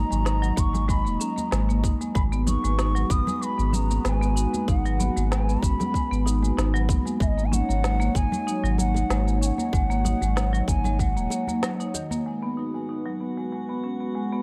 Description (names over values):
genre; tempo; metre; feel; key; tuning
organic downtempo; 95 BPM; 4/4; swing 54% on 16ths; G# minor; A4 = 439 Hz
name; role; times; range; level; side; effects
hollow bansuri; melody; 0.0-11.9 s; D#5 to D#6; -34 LUFS; equal; delay
warm analog pad; sustained chords; 0.0-14.4 s; F#3 to D#5; -37 LUFS; equal; chorus, sidechain pumping
marimba with hard mallets; arpeggios; 0.0-14.4 s; D#3 to D#4; -31 LUFS; equal; low-pass filter, delay
warm sub bass; bass; 0.0-11.3 s; D#1 to G#1; -26 LUFS; equal; sidechain pumping
electronic shaker and snare drum; drums; 0.1-12.2 s; none; -35 LUFS; equal; none
congas and bongos; percussion; 0.1-12.2 s; none; -36 LUFS; equal; none
electronic kick drum; drums; 0.6-11.1 s; none; -27 LUFS; equal; none
drifting glass-harmonics texture; texture; 12.9-14.4 s; F#4 to F#5; -42 LUFS; equal; chorus, built-in reverb
room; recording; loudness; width
digital ambience; dark, warm production; -24 LUFS; mono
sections
0.0-12.3 A section; 12.3-14.4 B section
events
break 11.6-12.3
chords
0.0 D#m/G#; 2.2 G#m7; 7.2 D#m7/G#; 12.3 G#m7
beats
0.26 0.89 1.52 | 2.15 2.79 3.42 4.05 | 4.68 5.31 5.94 6.58 | 7.21 7.84 8.47 9.10 | 9.73 10.37 11.00 11.63 | 12.26 12.89 13.52 14.15